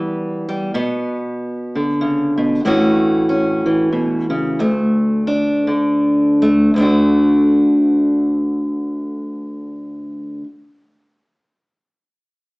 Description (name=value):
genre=folk, solo fingerstyle acoustic guitar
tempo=78-95 BPM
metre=3/4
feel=swing 57% on 8ths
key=D major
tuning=A4 = 436 Hz
part: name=fingerpicked steel-string acoustic guitar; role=solo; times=0.0-10.5 s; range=D2 to F#4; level=-15 LUFS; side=equal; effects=none
room=moderate studio reverb, RT60 1.0 s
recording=band playing live in one room, small speaker sound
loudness=-14 LUFS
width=side -24 dB against mid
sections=0.0-6.7 A section; 6.7-11.4 B section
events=slowing down 2.6-6.7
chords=0.0 Em; 0.8 Bm; 2.6 A6; 4.6 D5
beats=0.12 | 0.75 1.38 2.01 | 2.64 3.28 3.92 | 4.58 5.27 5.98 | 6.73 7.51 8.28 | 9.05 9.83